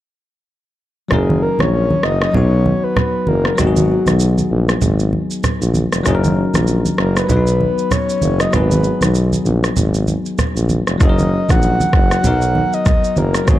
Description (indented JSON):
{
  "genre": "afrobeats",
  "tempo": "97 BPM",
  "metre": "4/4",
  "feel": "swing 58% on 16ths",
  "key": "F# major",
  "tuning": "A4 = 441 Hz",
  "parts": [
    { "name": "breathy flute-like synth lead", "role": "melody", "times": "1.1-13.6 s", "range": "F#4 to F#5", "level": "-20 LUFS", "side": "equal", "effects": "chorus, ping-pong delay" },
    { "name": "bell-like tine electric piano", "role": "accompaniment", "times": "1.1-13.6 s", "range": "F#3 to B4", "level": "-21 LUFS", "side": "left 3 dB", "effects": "none" },
    { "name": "warm tuba", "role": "bass", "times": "1.1-13.6 s", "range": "E#1 to B1", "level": "-17 LUFS", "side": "equal", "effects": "none" },
    { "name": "deep house drum kit", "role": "drums", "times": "1.1-13.6 s", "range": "kick drum, rim click, shaker", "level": "-18 LUFS", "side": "equal", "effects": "none" },
    { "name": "congas", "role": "percussion", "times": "1.1-13.6 s", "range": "none", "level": "-20 LUFS", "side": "right 2 dB", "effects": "none" }
  ],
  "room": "light reverb, digital ambience",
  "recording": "dark, warm production",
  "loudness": "-13 LUFS",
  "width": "side -14 dB against mid",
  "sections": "1.1-13.6 A section",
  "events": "kick muted 1.1-11.0",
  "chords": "1.1 F#6; 2.3 B; 3.6 G#m7; 6.1 F#6; 7.3 B; 8.5 G#m7; 11.0 F#6; 12.2 Bmaj7"
}